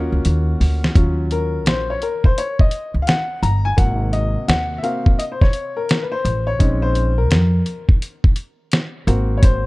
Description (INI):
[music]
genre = hip hop, jazz-hop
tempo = 85 BPM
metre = 4/4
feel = swing 64% on 16ths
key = Eb dorian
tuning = A4 = 440 Hz
[part]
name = clear upright piano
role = accompaniment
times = 0.0-9.7 s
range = C3 to Bb5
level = -22 LUFS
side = left 2 dB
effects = none
[part]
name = upright bass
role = bass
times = 0.0-9.7 s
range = G1 to F2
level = -18 LUFS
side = equal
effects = none
[part]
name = dusty soul sampler-style drum kit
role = drums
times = 0.2-9.6 s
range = hi-hat, kick drum, snare drum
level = -15 LUFS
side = equal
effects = none
[sound]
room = little or no reverb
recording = dark, warm production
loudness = -16 LUFS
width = side -22 dB against mid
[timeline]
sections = 1.0-9.7 A section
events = drum fill 0.2-1.0; upright piano solo 1.0-9.7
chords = 0.0 Ebm9; 1.0 Ebm7; 3.8 Ab7; 6.6 Bbm11; 9.1 Ab7